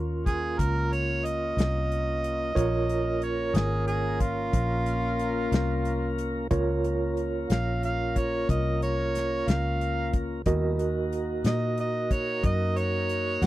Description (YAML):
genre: slow blues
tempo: 61 BPM (dotted quarters)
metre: 12/8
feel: straight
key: Bb minor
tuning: A4 = 440 Hz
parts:
  - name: overdriven tine electric piano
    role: accompaniment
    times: 0.0-13.5 s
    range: F4 to C6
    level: -32 LUFS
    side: right 4 dB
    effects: fast tremolo
  - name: tonewheel organ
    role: sustained chords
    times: 0.0-13.5 s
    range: G3 to Bb4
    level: -33 LUFS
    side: left 3 dB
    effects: slow rotary speaker
  - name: vintage muted fingered electric bass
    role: bass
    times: 0.0-13.5 s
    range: Ab1 to Bb2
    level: -29 LUFS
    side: equal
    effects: none
  - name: mellow harmonica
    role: second line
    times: 0.3-13.5 s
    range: F4 to F5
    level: -30 LUFS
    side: right 2 dB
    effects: overdrive
  - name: natural country drum kit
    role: drums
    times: 0.3-13.5 s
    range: hi-hat, kick drum, snare drum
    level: -27 LUFS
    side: left 1 dB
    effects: none
room: little or no reverb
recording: dry, close 1970s-style studio recording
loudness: -24 LUFS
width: side -15 dB against mid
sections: 0.0-13.5 A section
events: harmonica solo 0.0-13.5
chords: 0.0 Bbm; 10.5 Ebm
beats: 0.59 1.58 | 2.56 3.55 4.54 5.53 | 6.51 7.50 8.48 9.47 | 10.46 11.45 12.43 13.42